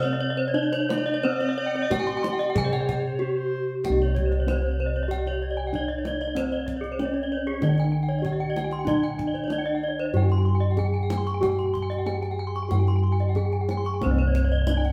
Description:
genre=Balinese gamelan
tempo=94 BPM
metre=4/4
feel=straight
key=C pelog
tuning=A4 = 440 Hz
part: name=gamelan-type bronze metallophone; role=melody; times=0.0-14.9 s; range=C4 to Ab4-40c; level=-32 LUFS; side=equal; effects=none
part: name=gamelan-type bronze metallophone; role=arpeggios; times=0.0-14.8 s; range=Ab4-40c to Db6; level=-34 LUFS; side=equal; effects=none
part: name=gamelan-type bronze metallophone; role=arpeggios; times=0.0-14.9 s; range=Ab4-40c to C6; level=-36 LUFS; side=equal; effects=none
part: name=gamelan-type bossed gongs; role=bass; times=0.0-14.9 s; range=C2 to G4-45c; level=-28 LUFS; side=equal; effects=none
part: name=kendang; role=percussion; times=0.0-14.9 s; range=none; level=-37 LUFS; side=equal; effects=none
part: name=alto recorder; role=second line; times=0.9-3.7 s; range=C5 to D5+48c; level=-36 LUFS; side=equal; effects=none
room=moderate large studio reverb, RT60 1.1 s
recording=band playing live in one room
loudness=-25 LUFS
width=mono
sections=0.0-3.9 A section; 3.9-14.0 B section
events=break 2.9-3.9; drum fill 3.4-3.9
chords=none

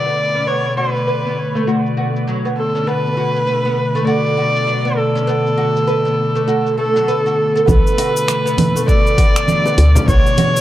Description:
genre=organic downtempo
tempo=100 BPM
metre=4/4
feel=swing 60% on 16ths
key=B minor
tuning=A4 = 441 Hz
part: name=warm kamancheh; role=melody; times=0.0-10.6 s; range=A4 to D5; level=-18 LUFS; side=equal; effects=dub echo
part: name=warm analog pad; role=sustained chords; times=0.0-10.6 s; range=B2 to A3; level=-21 LUFS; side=left 1 dB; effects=chorus, sidechain pumping
part: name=oud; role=arpeggios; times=0.0-10.5 s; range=F#3 to B4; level=-21 LUFS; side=right 2 dB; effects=low-pass filter, analog delay
part: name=deep house drum kit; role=drums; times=0.1-10.6 s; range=cabasa, congas, finger snaps, hi-hat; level=-20 LUFS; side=right 2 dB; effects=low-pass filter on hats, low-pass filter on perc, low-pass filter on snare, analog delay
part: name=woody FM bass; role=bass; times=7.7-10.2 s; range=B1 to D2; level=-11 LUFS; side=equal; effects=none
part: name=electronic kick drum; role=drums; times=7.7-10.2 s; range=none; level=-14 LUFS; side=equal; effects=none
part: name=bongos and congas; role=percussion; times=8.0-10.5 s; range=none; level=-25 LUFS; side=left 2 dB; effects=analog delay
room=moderate spring reverb, RT60 2.6 s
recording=echo-heavy mix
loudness=-13 LUFS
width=side -13 dB against mid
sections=0.0-7.7 A section; 7.7-10.6 B section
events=filter sweep on analog synth pad 0.0-7.7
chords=0.0 Bm7

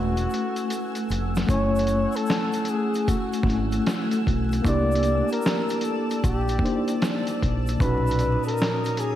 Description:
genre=lo-fi hip hop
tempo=76 BPM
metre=4/4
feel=swing 66% on 16ths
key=unclear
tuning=A4 = 440 Hz
part: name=breathy flugelhorn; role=melody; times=0.0-9.2 s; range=F#4 to D5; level=-28 LUFS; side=left 1 dB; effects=none
part: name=mellow tine electric piano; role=accompaniment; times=0.0-9.2 s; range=A#2 to G#5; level=-26 LUFS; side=equal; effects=medium stereo tremolo
part: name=granular cloud pad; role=sustained chords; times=0.0-9.2 s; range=A3 to E6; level=-32 LUFS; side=left 1 dB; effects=built-in reverb, lush chorus
part: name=deep dub fingered electric bass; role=bass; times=0.0-8.4 s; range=E1 to C2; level=-26 LUFS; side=equal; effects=none
part: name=lo-fi sampler-style drum kit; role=drums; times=0.2-9.2 s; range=hi-hat, kick drum, snare drum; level=-27 LUFS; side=equal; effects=overdrive
part: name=egg shaker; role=percussion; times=0.2-9.2 s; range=none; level=-50 LUFS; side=right 7 dB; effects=none
room=moderate lush hall reverb, RT60 2.3 s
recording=dreamy mix soaked in reverb, vinyl crackle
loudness=-21 LUFS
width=side -12 dB against mid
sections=0.0-1.5 A section; 1.5-9.2 B section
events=drum fill 0.0-1.5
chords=0.0 F#m9; 4.6 C13; 7.8 Bmaj9

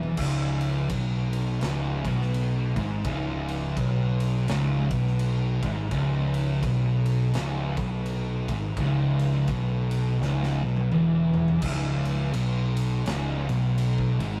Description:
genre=stoner and doom metal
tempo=84 BPM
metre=4/4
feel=swing 60% on 8ths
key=C# minor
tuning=A4 = 440 Hz
part: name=fuzz guitar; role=riff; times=0.0-14.4 s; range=C#2 to B2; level=-27 LUFS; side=equal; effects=distortion
part: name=fuzz fingered electric bass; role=bass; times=0.0-14.4 s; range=C#1 to B1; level=-33 LUFS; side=equal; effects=overdrive
part: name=raw garage drum kit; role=drums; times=0.0-14.3 s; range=crash cymbal, kick drum, ride cymbal, snare drum, toms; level=-37 LUFS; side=equal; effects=none
room=moderate studio reverb, RT60 0.6 s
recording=rough rehearsal-room recording, warm saturation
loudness=-26 LUFS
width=mono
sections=0.2-11.6 A section; 11.6-14.4 B section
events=drum fill 0.0, 10.2-11.6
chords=0.2 C#m; 11.6 C#5

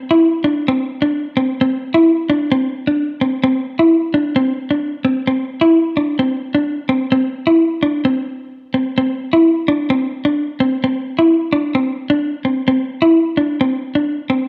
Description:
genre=highlife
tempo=130 BPM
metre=4/4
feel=straight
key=C major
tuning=A4 = 438 Hz
part: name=clean electric guitar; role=solo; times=0.1-14.5 s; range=C4 to E4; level=-16 LUFS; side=equal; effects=spring reverb
room=moderate small room ambience, RT60 0.5 s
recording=dry, close 1970s-style studio recording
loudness=-16 LUFS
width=mono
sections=0.0-5.3 A section; 5.3-14.5 B section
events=none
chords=none

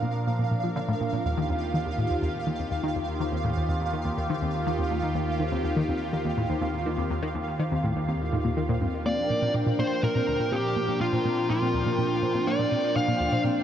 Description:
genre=ambient, sequencer-driven space music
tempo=123 BPM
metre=4/4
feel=straight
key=unclear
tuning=A4 = 440 Hz
part: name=phased analog pad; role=sustained chords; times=0.0-13.6 s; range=Eb2 to C5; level=-28 LUFS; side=equal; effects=phaser, chorus
part: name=soft round pluck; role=arpeggios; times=0.0-13.6 s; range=Bb3 to C5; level=-37 LUFS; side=moving between left 4 dB and right 2 dB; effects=chorus, auto-pan, ping-pong delay
part: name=tight sequenced synth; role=riff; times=0.0-13.5 s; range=D2 to F3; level=-29 LUFS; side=equal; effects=chorus, ping-pong delay
part: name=pulsing gated texture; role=texture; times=0.0-13.6 s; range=F5 to G5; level=-35 LUFS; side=right 2 dB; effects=chorus, built-in reverb
part: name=fuzz lead guitar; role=melody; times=9.1-13.4 s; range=F4 to F5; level=-26 LUFS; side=equal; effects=distortion, ping-pong delay
room=moderate huge ambient reverb, RT60 8.2 s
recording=worn, warbling old tape, cassette tape, warbly pitch drift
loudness=-24 LUFS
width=side -10 dB against mid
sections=0.0-13.6 A section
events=fade-in on synth arpeggio sound 0.0-13.6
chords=0.0 Bb; 1.3 Ebadd9; 9.1 Bb

